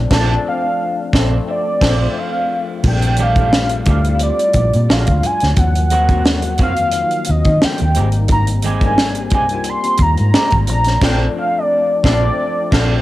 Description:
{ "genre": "R&B, neo-soul", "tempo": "88 BPM", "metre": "4/4", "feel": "swing 55% on 16ths", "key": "Bb major", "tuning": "A4 = 439 Hz", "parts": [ { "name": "bell-like tine electric piano", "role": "accompaniment", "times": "0.0-13.0 s", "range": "Eb3 to Gb4", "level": "-23 LUFS", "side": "left 6 dB", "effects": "ensemble chorus, cassette tape" }, { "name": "vintage muted fingered electric bass", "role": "bass", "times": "0.0-13.0 s", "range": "Ab1 to Eb3", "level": "-16 LUFS", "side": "equal", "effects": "transformer saturation" }, { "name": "warm velvety synth lead", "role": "melody", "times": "0.1-13.0 s", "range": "D5 to C6", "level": "-18 LUFS", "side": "equal", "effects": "chorus" }, { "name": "electric guitar through a small old amp", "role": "second line", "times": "0.1-13.0 s", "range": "Ab3 to A4", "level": "-28 LUFS", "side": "right 7 dB", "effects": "cassette tape, tape echo" }, { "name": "tight funk drum kit", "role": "drums", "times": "0.1-13.0 s", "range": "crash cymbal, hi-hat, kick drum, snare drum", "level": "-17 LUFS", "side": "equal", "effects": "cassette tape" }, { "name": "congas", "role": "percussion", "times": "2.8-10.9 s", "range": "none", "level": "-29 LUFS", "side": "right 5 dB", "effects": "none" }, { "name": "warm horn section", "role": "stabs", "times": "11.0-12.9 s", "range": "D3 to F4", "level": "-29 LUFS", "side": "left 7 dB", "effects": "cassette tape" } ], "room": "small room reverb", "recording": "home recording on cassette", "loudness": "-13 LUFS", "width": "side -16 dB against mid", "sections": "0.0-2.8 A section; 2.8-13.0 A section", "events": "band accent 0.1-2.8, 11.0-13.0", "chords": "0.0 Bbmaj9; 2.8 Bbmaj13; 4.9 Bb7b13; 5.6 Ebm6; 8.0 Abmaj7; 10.7 Bbmaj9" }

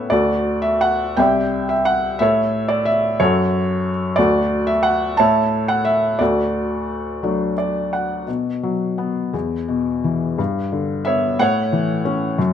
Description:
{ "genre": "classical, lyrical solo piano", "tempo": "56-61 BPM (dotted quarters)", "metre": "6/8", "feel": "rubato", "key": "D major, B minor from 8.3 s", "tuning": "A4 = 440 Hz", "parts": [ { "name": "felt-muted upright piano", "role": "solo", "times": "0.0-12.5 s", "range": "C2 to A5", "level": "-17 LUFS", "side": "equal", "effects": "none" } ], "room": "moderate recital hall reverb, RT60 1.5 s", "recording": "close, detailed microphones", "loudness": "-17 LUFS", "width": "side -9 dB against mid", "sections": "0.0-8.3 A section; 8.3-12.5 B section", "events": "felt piano fill 7.2-8.3", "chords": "0.1 D; 1.2 Cadd9; 2.2 A; 3.2 F#m; 4.2 D; 5.2 A; 6.2 D; 8.3 B5; 9.3 E5; 10.4 G; 11.4 A" }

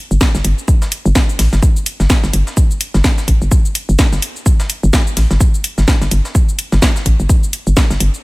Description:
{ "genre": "minimal techno", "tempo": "127 BPM", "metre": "4/4", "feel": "swing 58% on 16ths", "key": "unclear", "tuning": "A4 = 440 Hz", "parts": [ { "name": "hollow knocking FM bass", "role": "bass", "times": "0.1-8.1 s", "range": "G1 to A1", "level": "-13 LUFS", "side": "equal", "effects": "tube saturation, sidechain pumping" }, { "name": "house drum kit", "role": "drums", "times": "0.1-8.2 s", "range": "cabasa, hi-hat, snare drum", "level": "-19 LUFS", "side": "equal", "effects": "studio reverb" }, { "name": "breakbeat sampler-style drum kit", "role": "drums", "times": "0.2-8.1 s", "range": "hi-hat, shaker, snare drum", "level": "-26 LUFS", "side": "right 1 dB", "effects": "high-pass filter on perc, studio reverb, high-pass filter on snare, high-pass filter on hats" }, { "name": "electronic kick drum", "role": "drums", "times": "0.2-7.9 s", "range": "none", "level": "-12 LUFS", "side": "equal", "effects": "studio reverb" } ], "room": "little or no reverb", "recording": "none", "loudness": "-11 LUFS", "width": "side -22 dB against mid", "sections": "0.0-8.2 A section", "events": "none", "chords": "none" }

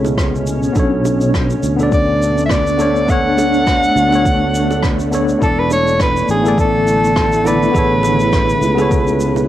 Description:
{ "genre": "sunset chillout", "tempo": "103 BPM", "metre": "4/4", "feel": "swing 56% on 16ths", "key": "B dorian", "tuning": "A4 = 438 Hz", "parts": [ { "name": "tine electric piano", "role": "accompaniment", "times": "0.0-9.5 s", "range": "B3 to D5", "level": "-18 LUFS", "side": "equal", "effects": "overdrive, fast stereo tremolo, auto-pan, tape echo" }, { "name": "shimmering ambient pad", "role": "sustained chords", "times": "0.0-9.5 s", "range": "B2 to E4", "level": "-20 LUFS", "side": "equal", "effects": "chorus, built-in reverb" }, { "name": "sustaining fretless electric bass", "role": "bass", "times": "0.0-9.5 s", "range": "E1 to D2", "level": "-20 LUFS", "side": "equal", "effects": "tube saturation" }, { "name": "bongos", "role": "percussion", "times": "0.0-9.5 s", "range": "none", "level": "-26 LUFS", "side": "right 10 dB", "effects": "none" }, { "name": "shaker and rim click", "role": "drums", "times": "0.1-9.5 s", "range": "none", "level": "-26 LUFS", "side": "equal", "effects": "cassette tape" }, { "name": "electronic kick drum", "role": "drums", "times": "0.2-9.0 s", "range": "none", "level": "-18 LUFS", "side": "equal", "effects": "cassette tape" }, { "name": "breathy soprano saxophone", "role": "melody", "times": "1.9-9.5 s", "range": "G#4 to F#5", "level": "-16 LUFS", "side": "equal", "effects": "cassette tape, tape echo" } ], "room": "moderate studio reverb, RT60 0.6 s", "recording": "home recording on cassette", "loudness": "-12 LUFS", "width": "side -12 dB against mid", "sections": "0.0-9.5 A section", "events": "none", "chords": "0.0 Amaj9; 0.8 Bm9; 5.4 E7sus4; 7.7 Amaj9" }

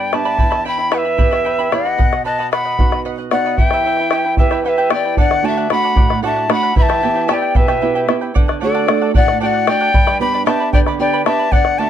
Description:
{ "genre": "andean folk, Andean ensemble", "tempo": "76 BPM (dotted quarters)", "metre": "6/8", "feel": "straight", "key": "E minor", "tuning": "A4 = 439 Hz", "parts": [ { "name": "reedy quena", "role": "melody", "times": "0.0-11.9 s", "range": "D5 to B5", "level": "-18 LUFS", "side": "left 1 dB", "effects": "none" }, { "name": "breathy bright polished pan flute", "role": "second line", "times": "0.0-11.9 s", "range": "A4 to G5", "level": "-21 LUFS", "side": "left 3 dB", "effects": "none" }, { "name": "charango", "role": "accompaniment", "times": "0.0-11.9 s", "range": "E4 to B5", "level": "-24 LUFS", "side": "right 4 dB", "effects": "none" }, { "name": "nylon-string guitar", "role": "accompaniment", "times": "0.0-11.9 s", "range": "E2 to G4", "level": "-22 LUFS", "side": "right 6 dB", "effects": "none" }, { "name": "bombo", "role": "percussion", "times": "0.1-11.8 s", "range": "none", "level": "-15 LUFS", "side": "equal", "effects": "none" } ], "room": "moderate small room reverb, RT60 0.5 s", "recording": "dark, warm production", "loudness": "-13 LUFS", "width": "side -10 dB against mid", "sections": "0.0-5.2 A section; 5.2-11.9 B section", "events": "none", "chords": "0.4 Em; 2.0 B; 3.6 Em; 5.2 D; 6.8 Em; 8.4 D; 9.9 G" }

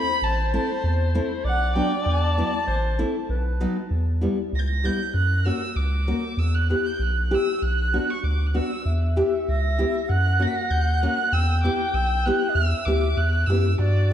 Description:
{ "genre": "klezmer", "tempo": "97 BPM", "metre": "2/4", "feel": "straight", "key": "E dorian sharp4 from 3.9 s", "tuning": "A4 = 440 Hz", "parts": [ { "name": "dark violin", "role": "melody", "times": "0.0-14.1 s", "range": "D5 to B6", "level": "-28 LUFS", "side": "right 2 dB", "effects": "tape echo" }, { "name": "clear clarinet", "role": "second line", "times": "0.0-3.9, 8.9-14.1 s", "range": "F#4 to G5", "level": "-29 LUFS", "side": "left 2 dB", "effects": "none" }, { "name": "nylon-string guitar", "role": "accompaniment", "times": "0.0-13.7 s", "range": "F#3 to G4", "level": "-27 LUFS", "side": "left 2 dB", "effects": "none" }, { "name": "round analog bass", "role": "bass", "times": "0.2-14.1 s", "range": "A1 to G2", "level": "-23 LUFS", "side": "equal", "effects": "none" } ], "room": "moderate recital hall reverb, RT60 1.7 s", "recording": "dark, warm production", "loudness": "-20 LUFS", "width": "side -10 dB against mid", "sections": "0.0-3.9 A section; 3.9-13.8 B section", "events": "none", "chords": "0.0 Am; 1.5 Bm; 2.7 Am; 3.3 B; 3.9 Em; 5.1 F#; 6.4 Em; 7.6 Bm; 8.9 Em; 10.1 F#; 11.3 Em" }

